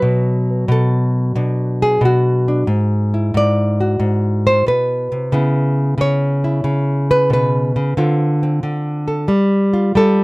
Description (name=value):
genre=solo jazz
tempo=91 BPM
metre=4/4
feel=swing 68% on 8ths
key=unclear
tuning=A4 = 442 Hz
part: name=nylon-string guitar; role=solo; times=0.0-10.2 s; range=G#2 to D5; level=-14 LUFS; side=equal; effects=none
room=little or no reverb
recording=dry, close 1970s-style studio recording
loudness=-14 LUFS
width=side -25 dB against mid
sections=0.0-10.2 A section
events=nylon-string guitar solo 0.0-10.2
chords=0.0 Bm7; 2.7 G#7alt; 5.3 C#m7; 8.0 Dm7; 9.3 Fadd9/G